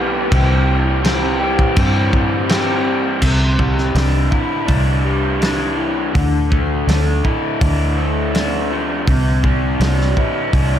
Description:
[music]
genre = rock, shoegaze and dream pop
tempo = 82 BPM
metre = 4/4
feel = straight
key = C major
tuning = A4 = 440 Hz
[part]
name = raw garage guitar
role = riff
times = 0.0-10.8 s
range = C3 to G4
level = -18 LUFS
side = left 1 dB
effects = overdrive, wide subtle chorus
[part]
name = vintage muted fingered electric bass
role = bass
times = 0.0-10.8 s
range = B1 to G2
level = -18 LUFS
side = equal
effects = none
[part]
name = loose indie drum kit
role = drums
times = 0.3-10.7 s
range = crash cymbal, hi-hat, kick drum, snare drum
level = -20 LUFS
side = equal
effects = none
[sound]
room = moderate plate reverb, RT60 2.4 s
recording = dreamy mix soaked in reverb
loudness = -14 LUFS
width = side -10 dB against mid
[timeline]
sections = 0.0-3.2 A section; 3.2-10.8 B section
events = none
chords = 0.3 C; 3.2 Cadd9; 6.1 Dmadd9; 9.1 Cadd9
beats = | 0.31 1.04 1.77 2.50 | 3.22 3.95 4.68 5.41 | 6.14 6.88 7.61 8.34 | 9.07 9.80 10.53

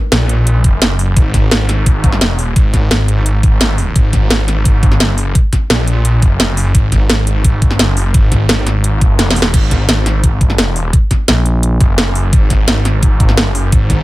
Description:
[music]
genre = dark technical drum and bass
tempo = 172 BPM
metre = 4/4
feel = straight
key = unclear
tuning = A4 = 439 Hz
[part]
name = snarling distorted saw bass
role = bass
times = 0.1-14.0 s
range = F#1 to A#1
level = -13 LUFS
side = equal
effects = distortion, tube saturation, sidechain pumping
[part]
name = drum and bass drum kit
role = drums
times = 0.1-14.0 s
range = crash cymbal, hi-hat, snare drum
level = -15 LUFS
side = equal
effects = none
[part]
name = electronic kick drum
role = drums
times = 0.6-14.0 s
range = none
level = -11 LUFS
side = equal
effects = none
[part]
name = growling FM bass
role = bass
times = 11.3-11.8 s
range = A#1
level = -11 LUFS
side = equal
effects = none
[sound]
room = digital ambience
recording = none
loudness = -10 LUFS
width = side -18 dB against mid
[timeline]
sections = 0.0-14.0 A section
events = drum fill 9.2-9.5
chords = 0.0 G#sus2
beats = 0.12 0.47 0.82 | 1.17 1.51 1.86 2.21 | 2.56 2.91 3.26 3.61 | 3.96 4.30 4.65 5.00 | 5.35 5.70 6.05 6.40 | 6.75 7.10 7.45 7.79 | 8.14 8.49 8.84 9.19 | 9.54 9.89 10.23 10.58 | 10.93 11.28 11.63 11.98 | 12.33 12.68 13.03 13.38 | 13.72

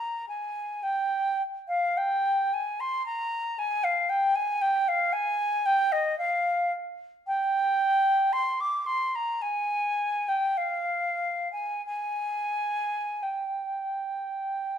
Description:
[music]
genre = classical, free, expressive piece for unaccompanied flute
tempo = 43-59 BPM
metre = 4/4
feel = rubato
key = unclear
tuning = A4 = 438 Hz
[part]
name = silver concert flute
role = solo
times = 0.0-14.8 s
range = Eb5 to D6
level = -25 LUFS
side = equal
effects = none
[sound]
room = moderate recital hall reverb, RT60 1.3 s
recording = none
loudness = -25 LUFS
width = side -8 dB against mid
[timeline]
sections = 0.0-14.8 A section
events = none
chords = none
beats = 0.83 1.97 | 3.05 4.08 5.14 6.18 | 7.27 8.32 9.40 10.56 | 11.84 13.21 14.54

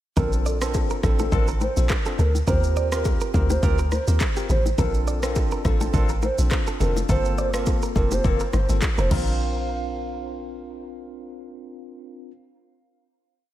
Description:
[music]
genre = afrobeats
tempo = 104 BPM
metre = 4/4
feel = swing 55% on 16ths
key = Bb major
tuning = A4 = 441 Hz
[part]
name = hollow clarinet-like synth lead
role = melody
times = 0.2-11.1 s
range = A4 to C5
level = -29 LUFS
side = right 2 dB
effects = chorus, diffuse ambient delay
[part]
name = bell-like tine electric piano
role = accompaniment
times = 0.2-12.3 s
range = Bb3 to Bb4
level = -31 LUFS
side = equal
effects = slow stereo tremolo
[part]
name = direct-recorded clean electric guitar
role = riff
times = 0.2-9.5 s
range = G4 to D5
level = -35 LUFS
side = right 6 dB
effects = diffuse ambient delay
[part]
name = deep log drum bass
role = bass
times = 0.2-12.3 s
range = F1 to Eb2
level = -23 LUFS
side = equal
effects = none
[part]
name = afro-pop drum kit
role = drums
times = 0.2-9.3 s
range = crash cymbal, handclaps, kick drum, rim click, shaker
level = -25 LUFS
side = equal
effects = none
[part]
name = congas and bongos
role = percussion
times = 0.2-9.6 s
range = none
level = -32 LUFS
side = left 5 dB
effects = none
[sound]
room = light reverb, digital ambience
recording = none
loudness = -20 LUFS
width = side -13 dB against mid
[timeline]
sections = 0.2-9.4 chorus; 9.4-11.7 final hit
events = none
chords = 0.2 Bbmaj7; 2.5 Eb6; 4.8 Bbmaj7; 7.1 Gm11; 9.1 Bb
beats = | 0.17 0.74 1.32 1.90 | 2.48 3.05 3.63 4.21 | 4.78 5.36 5.94 6.51 | 7.09 7.67 8.24 8.82 | 9.40 9.98 10.55 11.13

